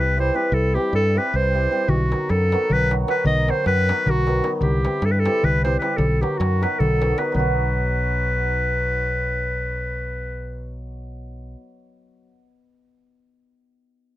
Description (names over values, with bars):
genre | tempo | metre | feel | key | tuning
balkan folk, Balkan wedding band | 307 BPM (eighths) | 7/8 | straight | B phrygian dominant | A4 = 440 Hz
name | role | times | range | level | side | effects
clear clarinet | melody | 0.0-10.9 s | F#4 to D#5 | -22 LUFS | equal | none
hammered dulcimer | accompaniment | 0.0-12.2 s | D#3 to G4 | -27 LUFS | right 1 dB | none
fingered electric bass | bass | 0.0-11.5 s | B1 to G2 | -22 LUFS | equal | none
darbuka | percussion | 1.9-7.6 s | none | -26 LUFS | equal | none
room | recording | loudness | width
little or no reverb | close, detailed microphones | -18 LUFS | side -14 dB against mid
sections
0.0-7.4 A section; 7.4-10.1 B section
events
none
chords
0.0 C; 1.9 B; 4.6 C; 6.0 B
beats
0.13 0.33 | 0.52 0.72 0.91 1.11 1.30 1.50 1.69 | 1.89 2.08 2.27 2.47 2.67 2.86 3.06 | 3.25 3.44 3.64 3.83 4.03 4.22 4.42 | 4.62 4.81 5.01 5.20 5.40 5.59 5.79 | 5.98 6.18 6.37 6.57 6.76 6.96 7.16 | 7.35 7.55 7.74 7.94 8.13 8.33 8.53 | 8.72 8.92 9.11 9.31 9.50 9.70 9.89